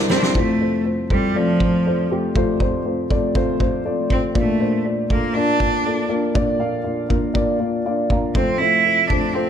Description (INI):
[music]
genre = piano-driven pop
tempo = 120 BPM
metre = 4/4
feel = straight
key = F major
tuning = A4 = 441 Hz
[part]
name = dark upright piano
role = accompaniment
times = 0.0-9.5 s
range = F1 to Bb5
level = -20 LUFS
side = left 2 dB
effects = none
[part]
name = bright cello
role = melody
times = 0.1-9.5 s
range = F3 to E4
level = -20 LUFS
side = right 2 dB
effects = none
[part]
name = loose indie drum kit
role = drums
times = 0.1-9.2 s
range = kick drum, snare drum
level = -22 LUFS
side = equal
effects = none
[sound]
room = moderate plate reverb, RT60 1.8 s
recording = dreamy mix soaked in reverb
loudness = -17 LUFS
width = side -8 dB against mid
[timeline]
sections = 0.4-9.5 A section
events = drum fill 0.0-0.4; upright piano fill 7.6-8.4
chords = 0.4 F; 4.4 Bb; 8.4 F